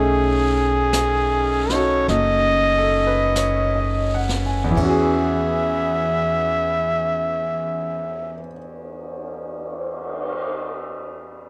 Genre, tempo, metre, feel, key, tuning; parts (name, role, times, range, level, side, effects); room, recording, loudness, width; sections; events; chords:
jazz ballad; 40-54 BPM; 4/4; swing 69% on 8ths; E major; A4 = 439 Hz
breathy trumpet; melody; 0.0-8.4 s; G#4 to E5; -23 LUFS; equal
bright grand piano; accompaniment; 0.0-11.5 s; E2 to G#5; -27 LUFS; equal
clear saxophone section; sustained chords; 0.0-8.4 s; D#3 to G#4; -31 LUFS; equal
upright bass; bass; 0.0-8.4 s; F#1 to E2; -27 LUFS; equal
jazz brush drum kit; drums; 0.9-10.4 s; brushed snare drum, cymbal swell, hi-hat, kick drum, ride cymbal, snare drum; -32 LUFS; equal
moderate large studio reverb, RT60 0.9 s; -20 LUFS; mono
0.0-4.8 A section; 4.8-10.7 B section
slowing down 0.0-4.8
0.0 B13; 4.8 E6